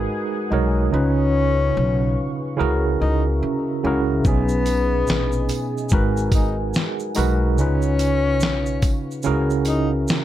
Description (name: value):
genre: lo-fi hip hop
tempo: 72 BPM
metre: 4/4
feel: swing 62% on 16ths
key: unclear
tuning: A4 = 440 Hz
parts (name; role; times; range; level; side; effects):
- tine electric piano; accompaniment; 0.0-10.2 s; B2 to C#5; -22 LUFS; right 2 dB; overdrive, medium stereo tremolo
- deep dark ambient pad; sustained chords; 0.0-10.2 s; G#4 to C#6; -33 LUFS; right 2 dB; chorus, built-in reverb
- upright bass; bass; 0.0-10.0 s; G#1 to C#3; -22 LUFS; equal; none
- breathy tenor saxophone; melody; 0.9-9.9 s; B3 to D#4; -25 LUFS; left 4 dB; none
- dusty soul sampler-style drum kit; drums; 4.2-10.2 s; hi-hat, kick drum, shaker, snare drum; -21 LUFS; equal; none
- tambourine; percussion; 4.7-9.9 s; none; -38 LUFS; right 7 dB; none
room: light reverb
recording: none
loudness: -18 LUFS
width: side -12 dB against mid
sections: 0.0-10.2 A section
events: none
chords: 0.0 G#m7; 0.9 C#7; 2.6 F#9/C#; 4.2 B6; 5.9 G#m7; 7.6 C#7; 9.2 F#9/C#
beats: 0.08 | 0.91 1.75 2.58 3.41 | 4.25 5.08 5.91 6.75 | 7.58 8.41 9.25 10.08